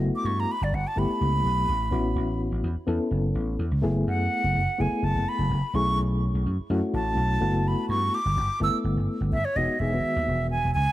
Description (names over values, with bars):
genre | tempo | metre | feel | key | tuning
electric jazz fusion | 126 BPM | 4/4 | straight | E major | A4 = 440 Hz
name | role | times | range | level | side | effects
reed electric piano | accompaniment | 0.0-10.7 s | D#3 to A4 | -29 LUFS | left 2 dB | fast tremolo
vintage slap bass | bass | 0.0-10.9 s | E1 to G2 | -26 LUFS | equal | none
breathy silver concert flute | melody | 0.2-10.9 s | C#5 to E6 | -27 LUFS | right 1 dB | none
room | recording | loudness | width
light reverb | dark, warm production | -23 LUFS | side -15 dB against mid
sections
0.0-9.6 A section; 9.6-10.9 B section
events
flute solo 0.0-9.6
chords
0.0 Gmaj13; 1.9 A69; 3.8 F#m11; 5.7 B13sus4; 7.4 Gmaj13; 9.6 Emaj9